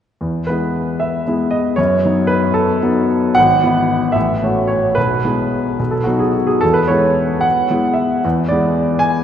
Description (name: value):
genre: classical, romantic character piece for solo piano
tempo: 75 BPM (dotted quarters)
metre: 6/8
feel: uneven beats, rubato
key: E major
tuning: A4 = 440 Hz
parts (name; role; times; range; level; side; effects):
- clear grand piano; solo; 0.2-9.2 s; G#1 to G#5; -14 LUFS; equal; none
room: wet cathedral reverb, RT60 4.8 s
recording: recorded in a church or concert hall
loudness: -14 LUFS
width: side -9 dB against mid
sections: 0.2-9.2 A section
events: none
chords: 0.2 E; 1.8 B7/F#; 3.4 E/G#; 4.1 F#m7/A; 5.0 E/B; 5.8 B; 6.6 E